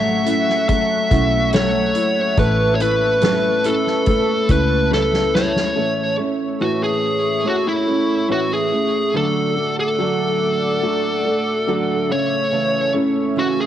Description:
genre	pop ballad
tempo	71 BPM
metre	4/4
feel	straight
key	A major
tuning	A4 = 440 Hz
part	fuzz lead guitar	melody	0.0-13.7 s	E4 to E5	-19 LUFS	equal	distortion
part	warm baby grand piano	accompaniment	0.0-13.7 s	C#3 to C#5	-25 LUFS	left 8 dB	cassette tape
part	chorused pulse-width pad	sustained chords	0.0-13.7 s	A3 to D6	-26 LUFS	equal	cassette tape
part	nylon-string guitar	arpeggios	0.0-13.7 s	A2 to B4	-24 LUFS	right 7 dB	cassette tape
part	vintage muted fingered electric bass	bass	0.0-5.7 s	A1 to C#2	-23 LUFS	equal	none
part	soft-mallet drum kit	drums	0.3-5.8 s	hi-hat, kick drum, snare drum	-21 LUFS	equal	cassette tape
room	light reverb, small room ambience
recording	home recording on cassette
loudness	-16 LUFS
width	side -11 dB against mid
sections	0.0-5.8 A section; 5.8-13.7 B section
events	drum fill 4.9-5.8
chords	0.0 A6; 2.4 Aadd9; 5.8 A; 9.1 D; 12.1 A

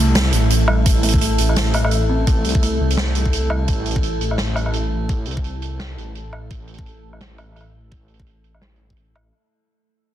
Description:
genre	half-time drum and bass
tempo	170 BPM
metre	4/4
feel	swing 57% on 16ths, half-time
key	A minor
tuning	A4 = 440 Hz
part	deep dark ambient pad	sustained chords	0.0-9.3 s	A3 to A5	-27 LUFS	equal	chorus, built-in reverb, vintage 12-bit sampler grit, sidechain pumping
part	dark detuned saw bass	bass	0.0-9.3 s	A1 to C2	-20 LUFS	equal	none
part	downlifter	sound effects	0.0-0.9 s	none	-38 LUFS	left 4 dB	none
part	metallic inharmonic drone	texture	0.0-9.3 s	A4	-30 LUFS	right 1 dB	chorus, built-in reverb
part	kalimba	arpeggios	0.1-3.8 s	G3 to A4	-28 LUFS	right 3 dB	vintage 12-bit sampler grit, tape echo
part	swinging big-band drum kit	drums	0.1-9.2 s	hi-hat, snare drum, woodblock	-23 LUFS	right 1 dB	low-pass filter on hats, low-pass filter on snare, low-pass filter on perc, low-pass filter on room
part	electronic kick drum	drums	0.9-9.0 s	none	-19 LUFS	equal	none
room	small room reverb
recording	dense, heavily limited modern master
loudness	-16 LUFS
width	side -12 dB against mid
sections	0.0-9.3 A section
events	fade-out 0.0-9.3; filter sweep on drum 0.0-9.3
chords	0.0 A5

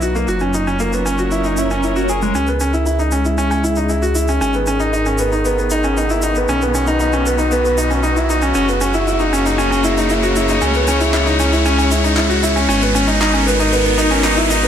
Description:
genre	piano and strings electronica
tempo	116 BPM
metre	4/4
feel	straight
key	C# dorian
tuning	A4 = 439 Hz
part	rich string quartet	sustained chords	0.0-14.7 s	A#2 to C#5	-20 LUFS	left 2 dB	low-pass filter
part	bright concert grand piano	riff	0.0-14.7 s	G#3 to G#4	-17 LUFS	equal	ping-pong delay
part	dark detuned saw bass	bass	0.0-14.7 s	F#1 to C#2	-20 LUFS	right 1 dB	tube saturation
part	shaker and handclaps	drums	0.0-14.7 s	none	-27 LUFS	right 1 dB	none
part	swell and riser	sound effects	1.5-14.7 s	none	-24 LUFS	equal	none
room	light reverb, studio reverb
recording	none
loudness	-14 LUFS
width	side -9 dB against mid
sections	0.0-2.3 A section; 2.3-14.7 B section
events	swell 1.5-2.3; build-up 2.3-14.7; riser 2.3-14.7; filter sweep on string quartet 2.3-14.7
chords	0.3 F#; 2.3 C#m; 4.4 G#madd9; 6.5 B; 8.6 F#; 10.6 C#m; 12.7 G#madd9

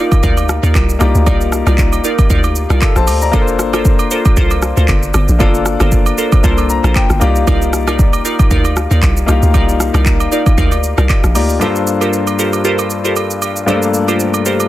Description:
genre	amapiano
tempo	116 BPM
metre	4/4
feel	swing 55% on 16ths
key	G minor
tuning	A4 = 441 Hz
part	clear concert grand piano	accompaniment	0.0-14.7 s	G2 to Bb5	-17 LUFS	left 4 dB	none
part	glassy wavetable pluck	stabs	0.0-14.7 s	Eb4 to D5	-19 LUFS	right 2 dB	chorus, tape echo
part	afro-pop drum kit	drums	0.1-14.7 s	handclaps, hi-hat, kick drum, rim click, shaker	-14 LUFS	equal	none
part	agogo bells	percussion	0.1-14.7 s	none	-24 LUFS	right 6 dB	none
part	tight log drum bass	bass	0.2-11.6 s	G1 to Eb2	-14 LUFS	equal	none
room	digital ambience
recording	dense, heavily limited modern master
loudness	-10 LUFS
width	side -15 dB against mid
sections	0.0-11.6 A section; 11.6-14.7 B section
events	drop 0.0-11.6; grand piano fill 6.4-7.5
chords	0.0 Cm11; 3.3 Gm11; 7.2 Cm11; 11.6 Gm11

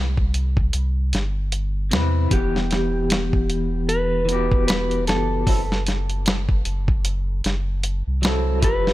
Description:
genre	trip hop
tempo	76 BPM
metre	4/4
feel	swing 58% on 16ths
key	unclear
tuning	A4 = 439 Hz
part	warm sub bass	bass	0.0-8.9 s	E1 to E2	-23 LUFS	equal	none
part	dusty soul sampler-style drum kit	drums	0.2-8.9 s	hi-hat, kick drum, snare drum	-21 LUFS	equal	none
part	electric guitar at the edge of break-up	accompaniment	1.9-8.9 s	C3 to F#5	-25 LUFS	left 1 dB	tremolo, tape echo
part	mellow electric guitar	melody	2.3-8.9 s	G4 to B4	-26 LUFS	equal	harmonic tremolo, tape echo
room	digital ambience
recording	none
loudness	-19 LUFS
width	side -16 dB against mid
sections	0.0-8.9 A section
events	none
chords	0.0 Cmaj7; 2.3 Emadd9; 5.5 F#m7b5

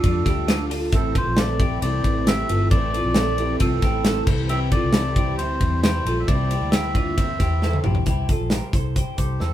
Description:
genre	jangly indie pop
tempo	134 BPM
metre	4/4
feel	straight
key	unclear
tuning	A4 = 439 Hz
part	melodica	melody	0.0-9.5 s	G4 to E5	-27 LUFS	equal	none
part	fingerpicked twelve-string acoustic guitar	accompaniment	0.0-9.5 s	A2 to C5	-31 LUFS	right 8 dB	none
part	string machine, violas	sustained chords	0.0-8.0 s	E3 to F4	-32 LUFS	left 2 dB	ensemble chorus
part	twelve-string electric guitar	arpeggios	0.0-9.5 s	C4 to C5	-28 LUFS	left 2 dB	none
part	vintage muted fingered electric bass	bass	0.0-9.5 s	G1 to F2	-24 LUFS	equal	none
part	modern studio drum kit	drums	0.0-9.5 s	crash cymbal, hi-hat, kick drum, ride cymbal, snare drum, toms	-22 LUFS	equal	none
room	moderate studio reverb, RT60 0.5 s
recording	band playing live in one room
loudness	-18 LUFS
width	side -12 dB against mid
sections	0.0-8.1 A section; 8.1-9.5 B section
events	drum fill 7.6-8.1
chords	0.0 Dm; 0.9 Am; 4.3 C

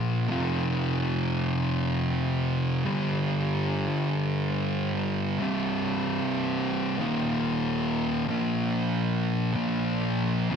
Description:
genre	rock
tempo	94 BPM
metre	4/4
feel	straight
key	unclear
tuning	A4 = 439 Hz
part	thick fuzz guitar	solo	0.0-10.6 s	C2 to Bb3	-25 LUFS	equal	distortion, slapback echo
room	moderate plate reverb, RT60 3.2 s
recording	heavily compressed radio sound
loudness	-25 LUFS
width	side -7 dB against mid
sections	0.0-8.3 A section; 8.3-10.6 B section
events	half time 0.0-8.3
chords	0.3 F5; 2.8 G5; 5.4 C5; 7.0 Eb5; 8.3 Bb5

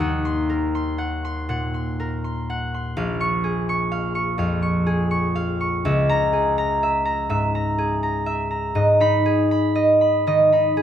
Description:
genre	classical, solo harp piece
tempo	78-85 BPM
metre	4/4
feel	rubato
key	unclear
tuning	A4 = 439 Hz
part	concert harp	solo	0.0-10.8 s	Bb1 to Eb6	-19 LUFS	equal	none
room	wet recital hall reverb, RT60 1.7 s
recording	none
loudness	-19 LUFS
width	side -9 dB against mid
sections	0.0-10.8 A section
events	none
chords	0.0 Ebm6; 3.0 Bbm7; 5.8 Dbm6; 8.8 Abm

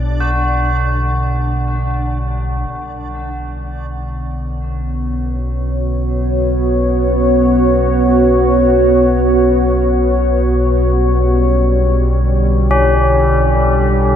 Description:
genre	dark ambient drone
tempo	free time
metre	none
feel	none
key	B minor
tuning	A4 = 440 Hz
part	deep dark ambient pad	sustained chords	0.0-14.2 s	D3 to C#5	-15 LUFS	equal	chorus, built-in reverb
part	tubular bells	arpeggios	0.0-6.1, 12.7-14.2 s	C#4 to F#4	-20 LUFS	left 1 dB	diffuse ambient delay
part	deep rumbling drone	drone	0.0-14.2 s	B1 to B2	-16 LUFS	equal	built-in reverb, phaser
part	backwards swelling texture	texture	0.0-2.7 s	D4	-31 LUFS	equal	built-in reverb
room	wet huge ambient reverb, RT60 8.7 s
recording	none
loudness	-12 LUFS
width	side -9 dB against mid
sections	0.0-2.7 A section; 2.7-14.2 B section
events	none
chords	0.0 G5; 2.7 Bm; 10.6 G5

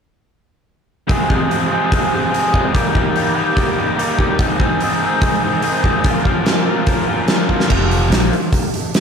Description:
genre	classic rock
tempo	145 BPM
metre	4/4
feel	straight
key	F minor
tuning	A4 = 440 Hz
part	raw garage guitar	riff	1.1-8.3 s	F2 to Bb4	-17 LUFS	equal	overdrive, spring reverb
part	big rock drum kit	drums	1.1-9.0 s	crash cymbal, hi-hat, kick drum, snare drum	-17 LUFS	equal	none
part	growling picked electric bass	bass	7.7-8.3 s	F1 to Bb1	-17 LUFS	equal	overdrive
room	moderate lush hall reverb, RT60 1.6 s, small room ambience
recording	big arena sound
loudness	-14 LUFS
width	side -6 dB against mid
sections	1.1-7.7 A section; 7.7-9.0 B section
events	drum fill 7.5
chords	1.1 Fm; 2.7 Eb; 4.4 Ab; 6.0 Bbm; 7.7 F5

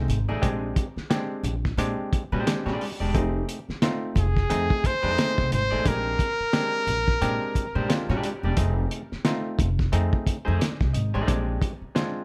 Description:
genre	funk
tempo	88 BPM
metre	4/4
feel	swing 60% on 16ths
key	unclear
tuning	A4 = 440 Hz
part	mellow clav	stabs	0.0-12.2 s	Ab3 to Eb5	-33 LUFS	equal	none
part	upright bass	bass	0.0-11.8 s	E1 to Bb2	-29 LUFS	equal	none
part	cloth-damped thuddy drum kit	drums	0.1-12.1 s	hi-hat, kick drum, snare drum	-28 LUFS	equal	none
part	electric guitar at the edge of break-up	accompaniment	0.3-11.3 s	Ab3 to D5	-34 LUFS	equal	spring reverb
part	bright trumpet	melody	4.2-8.2 s	G#4 to C5	-29 LUFS	equal	tape echo
room	light reverb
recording	none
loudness	-25 LUFS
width	mono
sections	0.0-12.2 A section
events	none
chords	0.4 Bb13; 3.1 F7#9; 5.9 Bb13; 8.6 F7#9; 11.3 Bb13

